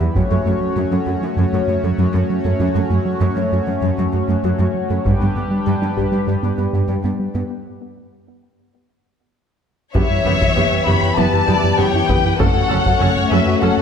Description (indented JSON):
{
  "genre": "cinematic, hybrid orchestral and electronic film score",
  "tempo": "98 BPM",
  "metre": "4/4",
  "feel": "straight",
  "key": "F# phrygian",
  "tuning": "A4 = 440 Hz",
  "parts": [
    { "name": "chorused pulse-width pad", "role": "sustained chords", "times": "0.0-13.8 s", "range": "E3 to C#5", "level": "-22 LUFS", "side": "left 2 dB", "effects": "phaser" },
    { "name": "tight sequenced synth", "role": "arpeggios", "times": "0.0-13.8 s", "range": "E3 to G4", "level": "-26 LUFS", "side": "left 2 dB", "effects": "chorus, ping-pong delay" },
    { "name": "round analog bass", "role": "riff", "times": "0.0-13.8 s", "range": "E2 to G3", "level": "-21 LUFS", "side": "right 2 dB", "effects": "none" },
    { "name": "rich studio cello section", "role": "bass", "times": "0.0-13.7 s", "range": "E2 to G2", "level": "-23 LUFS", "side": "right 3 dB", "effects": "none" },
    { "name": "solo taiko drums", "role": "drums", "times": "0.2-1.3, 5.1-6.3, 10.0-13.4 s", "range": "none", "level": "-23 LUFS", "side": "left 1 dB", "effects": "none" },
    { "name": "rich symphonic violin section", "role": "second line", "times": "9.9-13.8 s", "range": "A4 to D5", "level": "-23 LUFS", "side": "left 5 dB", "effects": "none" },
    { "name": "warm symphonic viola section", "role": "accompaniment", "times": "9.9-13.7 s", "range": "B3 to A4", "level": "-25 LUFS", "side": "equal", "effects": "none" },
    { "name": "mellow French horn section", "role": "sustained chords", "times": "9.9-13.8 s", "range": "A3 to G4", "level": "-24 LUFS", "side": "left 6 dB", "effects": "none" },
    { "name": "rich symphonic double bass section", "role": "bass", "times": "9.9-13.7 s", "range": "F#1", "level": "-26 LUFS", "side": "right 3 dB", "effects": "none" },
    { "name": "warm symphonic violin section", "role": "melody", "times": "10.0-13.8 s", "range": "E5 to B5", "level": "-20 LUFS", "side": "left 5 dB", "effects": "none" }
  ],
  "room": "moderate scoring stage reverb, RT60 1.8 s",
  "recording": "none",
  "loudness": "-15 LUFS",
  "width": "side -7 dB against mid",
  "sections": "0.0-9.9 A section; 9.9-13.8 B section",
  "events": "build-up 0.0-9.9; break 7.5-9.9",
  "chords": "0.2 F#m; 5.1 G; 7.5 N.C.; 9.9 Em/F#; 12.4 F#m",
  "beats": "| 0.15 0.77 1.38 1.99 | 2.60 3.21 3.83 4.44 | 5.05 5.66 6.28 6.89 | 7.50 8.11 8.72 9.34 | 9.95 10.56 11.17 11.79 | 12.40 13.01 13.62"
}